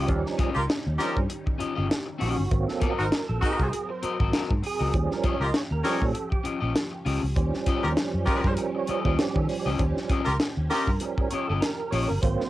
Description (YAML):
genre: funk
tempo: 99 BPM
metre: 4/4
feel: swing 56% on 16ths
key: Eb mixolydian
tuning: A4 = 435 Hz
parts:
  - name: electric guitar at the edge of break-up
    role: accompaniment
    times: 0.0-12.1 s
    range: C4 to Eb5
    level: -31 LUFS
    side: left 5 dB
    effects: cassette tape
  - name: string machine, full ensemble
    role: sustained chords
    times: 0.0-12.5 s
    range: C3 to Bb4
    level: -38 LUFS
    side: equal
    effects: phaser, ensemble chorus, cassette tape
  - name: percussive tonewheel organ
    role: stabs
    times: 0.0-12.5 s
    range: F3 to Eb5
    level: -30 LUFS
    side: right 5 dB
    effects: overdrive, chorus vibrato, stopped rotary speaker, cassette tape
  - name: fingered electric bass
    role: bass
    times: 0.0-12.4 s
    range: G1 to Eb3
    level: -28 LUFS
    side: equal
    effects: none
  - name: tight funk drum kit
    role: drums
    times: 0.1-12.5 s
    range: hi-hat, kick drum, snare drum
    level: -27 LUFS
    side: equal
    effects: cassette tape
  - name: clear horn section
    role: second line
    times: 0.5-10.9 s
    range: Eb4 to Db5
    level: -27 LUFS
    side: equal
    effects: cassette tape
room: light reverb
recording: home recording on cassette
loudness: -23 LUFS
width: side -15 dB against mid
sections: 0.0-12.5 A section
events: tonewheel organ solo 0.0-12.5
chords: 0.0 Eb9; 2.5 Ab9; 4.9 Eb9